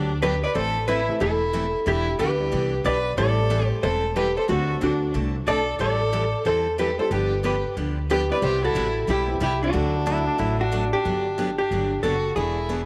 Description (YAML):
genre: country, western swing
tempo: 183 BPM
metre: 4/4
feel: swing 63% on 8ths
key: G major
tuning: A4 = 440 Hz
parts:
  - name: vintage hollow-body jazz guitar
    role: melody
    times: 0.0-12.9 s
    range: D4 to D5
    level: -27 LUFS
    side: equal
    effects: none
  - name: clear fiddle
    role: second line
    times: 0.0-12.9 s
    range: D4 to B4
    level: -32 LUFS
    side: equal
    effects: none
  - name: picked steel-string acoustic guitar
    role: accompaniment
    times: 0.0-12.8 s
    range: C3 to A4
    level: -33 LUFS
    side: equal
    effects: none
  - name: upright bass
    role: bass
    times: 0.0-12.9 s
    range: E1 to E2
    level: -29 LUFS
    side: equal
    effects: none
  - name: warm upright piano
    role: accompaniment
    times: 1.1-10.7 s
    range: E3 to A4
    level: -37 LUFS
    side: equal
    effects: none
  - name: pedal steel guitar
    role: second line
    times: 10.1-11.0 s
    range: D4 to E4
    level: -34 LUFS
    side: equal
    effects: none
room: moderate plate reverb, RT60 3.2 s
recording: none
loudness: -23 LUFS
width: mono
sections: 0.6-11.1 A section; 11.1-12.9 B section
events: none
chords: 0.0 Gmaj7; 0.6 Am; 1.9 Em7; 3.2 Am7; 4.5 D7; 5.8 Am7; 7.1 G7; 8.4 Cmaj7; 9.7 D; 11.1 Gmaj7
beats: 0.23 | 0.56 0.88 1.21 1.54 | 1.86 2.19 2.52 2.85 | 3.18 3.50 3.83 4.16 | 4.49 4.81 5.14 5.47 | 5.80 6.13 6.45 6.78 | 7.11 7.44 7.77 8.09 | 8.42 8.75 9.08 9.41 | 9.74 10.06 10.39 10.72 | 11.05 11.38 11.71 12.04 | 12.37 12.70